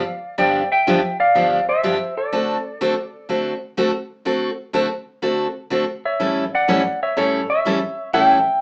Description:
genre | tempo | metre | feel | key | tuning
country | 124 BPM | 4/4 | swing 69% on 8ths | unclear | A4 = 440 Hz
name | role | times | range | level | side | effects
clean lap steel guitar | melody | 0.0-8.6 s | A4 to G5 | -21 LUFS | equal | none
picked steel-string acoustic guitar | accompaniment | 0.0-8.4 s | G2 to A4 | -22 LUFS | equal | none
room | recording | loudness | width
wet studio ambience, RT60 0.5 s | band playing live in one room, small speaker sound | -20 LUFS | mono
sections
0.0-8.6 A section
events
none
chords
0.0 G7; 2.3 D7; 6.2 A7

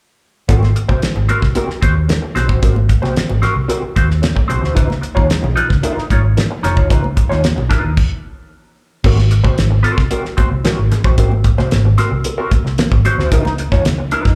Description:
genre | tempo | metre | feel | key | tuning
funk | 112 BPM | 4/4 | straight | Ab mixolydian | A4 = 440 Hz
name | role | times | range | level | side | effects
electric guitar through a small old amp | accompaniment | 0.5-14.3 s | C4 to Db5 | -22 LUFS | equal | wah, slapback echo
vintage muted fingered electric bass | bass | 0.5-14.4 s | F1 to F2 | -18 LUFS | equal | none
damped 70s drum kit | drums | 0.5-14.4 s | crash cymbal, hi-hat, kick drum, snare drum | -18 LUFS | equal | none
congas | percussion | 0.5-14.2 s | none | -29 LUFS | equal | slapback echo
room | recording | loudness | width
small room ambience | live gig heard through the venue's PA, club reverb | -15 LUFS | mono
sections
0.5-9.0 A section; 9.0-14.4 B section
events
stop 8.0-9.0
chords
0.5 Ab9; 4.8 Db9; 9.0 Ab9; 13.3 Db9

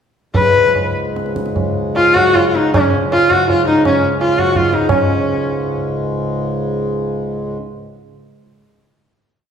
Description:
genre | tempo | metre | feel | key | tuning
indian classical, Hindustani | 146-205 BPM | 3/4 | straight | Db raga khamaj | A4 = 440 Hz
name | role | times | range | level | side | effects
rich sarangi | melody | 0.3-5.8 s | Db4 to Cb5 | -14 LUFS | left 1 dB | none
pedal harmonium | drone | 0.3-7.6 s | Db2 to Ab2 | -21 LUFS | equal | none
tabla | percussion | 0.3-5.0 s | none | -19 LUFS | right 2 dB | none
room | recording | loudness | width
wet recital hall reverb, RT60 1.8 s | heard from further back in the room | -13 LUFS | side -7 dB against mid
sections
0.3-4.9 climax; 4.9-6.8 final chord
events
speeding up 0.3-6.8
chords
none

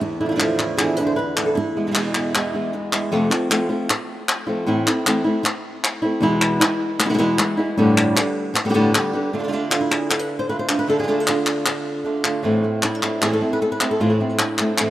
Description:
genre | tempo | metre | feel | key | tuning
flamenco | 154 BPM | 4/4 | straight | unclear | A4 = 436 Hz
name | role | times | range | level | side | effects
flamenco guitar | melody | 0.0-14.9 s | E2 to C5 | -20 LUFS | equal | none
flamenco guitar | stabs | 0.0-3.1, 9.3-14.9 s | E2 to F4 | -24 LUFS | right 3 dB | none
palmas hand claps | percussion | 0.4-14.9 s | none | -22 LUFS | left 1 dB | none
room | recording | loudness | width
moderate plate reverb, RT60 3.1 s | rough home demo mix | -18 LUFS | side -14 dB against mid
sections
0.0-3.1 A section; 3.1-9.3 B section; 9.3-14.9 C section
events
none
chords
0.0 Dm/E; 1.6 E; 3.1 F; 4.7 Am; 6.2 E; 7.8 Gadd9; 9.3 Dm; 12.4 Am

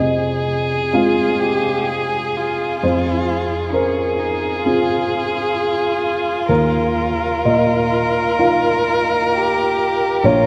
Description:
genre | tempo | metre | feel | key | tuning
neoclassical piano and strings | 65 BPM | 4/4 | rubato | F minor | A4 = 440 Hz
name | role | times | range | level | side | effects
rich violin | melody | 0.0-10.5 s | Ab4 to Bb4 | -22 LUFS | equal | none
dark upright piano | accompaniment | 0.0-10.5 s | Bb1 to F5 | -21 LUFS | equal | none
rich cello | second line | 0.9-10.5 s | Db4 to Ab4 | -25 LUFS | equal | none
room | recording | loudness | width
wet cathedral reverb, RT60 4.6 s | recorded in a church or concert hall | -18 LUFS | mono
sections
0.0-10.5 A section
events
none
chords
0.0 Fm; 6.5 Ebsus2

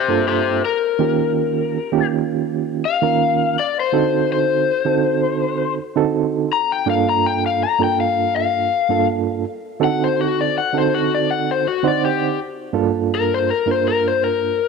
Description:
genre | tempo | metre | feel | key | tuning
blues | 82 BPM | 4/4 | swing 54% on 16ths | G minor | A4 = 440 Hz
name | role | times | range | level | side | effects
overdriven slide guitar | melody | 0.0-14.7 s | F#4 to Bb5 | -19 LUFS | left 9 dB | slapback echo
reed electric piano | accompaniment | 0.1-14.6 s | G2 to F#5 | -20 LUFS | right 10 dB | medium tremolo
room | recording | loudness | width
moderate plate reverb, RT60 3.2 s | 1960s-style stereo with parts hard left and right | -16 LUFS | side -5 dB against mid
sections
0.0-12.4 A section; 12.4-14.7 B section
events
electric slide guitar solo 0.0-12.4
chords
0.0 Gm7; 0.6 Eb7; 3.6 D7b9; 6.5 Gm7; 9.4 D7b9; 12.4 Gm7

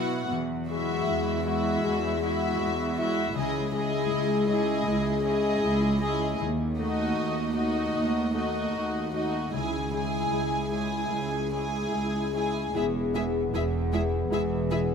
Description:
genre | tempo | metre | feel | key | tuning
cinematic, emotional film score for orchestra | 78 BPM | 4/4 | rubato | unclear | A4 = 440 Hz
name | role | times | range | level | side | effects
warm symphonic violin section | second line | 0.0-14.8 s | F#4 to G#5 | -31 LUFS | left 2 dB | none
dark symphonic viola section | accompaniment | 0.0-14.8 s | G#3 to E4 | -31 LUFS | right 3 dB | none
concert harp | arpeggios | 0.0-14.9 s | E2 to B4 | -32 LUFS | left 12 dB | none
warm symphonic cello section | bass | 0.0-14.9 s | C#2 to B2 | -31 LUFS | right 3 dB | none
mellow French horn section | sustained chords | 12.7-14.9 s | B3 to G#4 | -31 LUFS | left 2 dB | none
warm symphonic double bass section | bass | 12.7-14.9 s | E1 | -31 LUFS | right 3 dB | none
room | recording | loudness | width
moderate scoring stage reverb, RT60 1.6 s | close, detailed microphones | -25 LUFS | side -6 dB against mid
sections
0.0-12.7 A section; 12.7-14.9 B section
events
none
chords
0.3 Eadd9; 3.4 C#madd9; 6.4 D#dim; 9.5 C#m; 12.7 E

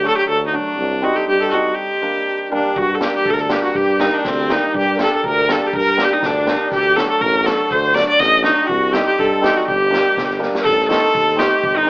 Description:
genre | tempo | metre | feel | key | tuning
klezmer | 122 BPM | 2/4 | straight | G harmonic minor | A4 = 440 Hz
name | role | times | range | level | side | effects
bright viola | melody | 0.0-11.9 s | C4 to Eb5 | -16 LUFS | equal | none
hammered dulcimer | accompaniment | 0.0-11.9 s | F#3 to Eb4 | -22 LUFS | equal | none
warm tuba | bass | 0.0-11.9 s | G1 to G2 | -22 LUFS | equal | none
musette accordion | second line | 2.5-11.9 s | C4 to Eb5 | -24 LUFS | equal | none
street-band drum kit | drums | 2.8-11.7 s | kick drum, snare drum | -25 LUFS | equal | none
room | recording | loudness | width
moderate small room reverb, RT60 0.5 s | AM radio sound | -14 LUFS | side -26 dB against mid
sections
0.0-2.8 A section; 2.8-10.7 A section; 10.7-11.9 B section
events
break 1.8-2.8; drum fill 10.4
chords
0.0 D; 0.8 Cm; 1.8 Gm; 6.7 D; 8.7 Cm; 9.7 Gm; 10.7 Adim

